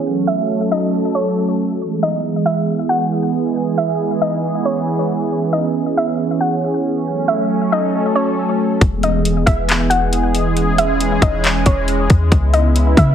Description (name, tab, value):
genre	hip hop, atmospheric cloud-rap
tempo	137 BPM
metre	4/4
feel	half-time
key	E major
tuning	A4 = 437 Hz
part	sweeping resonant pad	sustained chords	0.0-13.1 s	C#3 to A4	-18 LUFS	right 2 dB	chorus
part	soft round pluck	melody	0.3-13.1 s	C#5 to F#5	-20 LUFS	equal	chorus, ping-pong delay
part	clean 808-style bass	bass	8.8-13.1 s	E1 to C#3	-16 LUFS	left 1 dB	none
part	trap drum kit	drums	8.8-13.1 s	handclaps, hi-hat, kick drum	-15 LUFS	left 1 dB	none
room	light reverb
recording	heavily compressed radio sound, low-pass filter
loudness	-14 LUFS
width	side -9 dB against mid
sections	0.0-8.8 A section; 8.8-13.1 B section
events	filter sweep 0.0-8.8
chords	0.1 F#m; 1.8 E; 5.3 C#m7; 7.1 F#m; 8.8 E; 12.3 C#m7